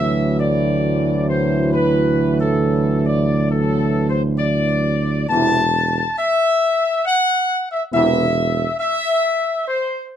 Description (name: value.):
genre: classical.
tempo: 68 BPM.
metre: 3/4.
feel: straight.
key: unclear.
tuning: A4 = 440 Hz.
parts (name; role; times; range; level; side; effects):
clear trumpet section; melody; 0.0-10.1 s; A4 to A5; -19 LUFS; left 2 dB; none.
bright trombone section; sustained chords; 0.0-8.3 s; A2 to E3; -25 LUFS; right 3 dB; none.
mellow French horn section; sustained chords; 0.0-8.3 s; F#3 to E4; -24 LUFS; left 2 dB; none.
warm tuba; bass; 0.0-8.7 s; E1 to D2; -19 LUFS; right 2 dB; none.
room: moderate studio reverb, RT60 0.8 s.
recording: dark, warm production.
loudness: -16 LUFS.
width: side -9 dB against mid.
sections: 0.0-10.2 A section.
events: none.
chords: 0.0 Dadd9; 5.3 Amadd9/E (rootless).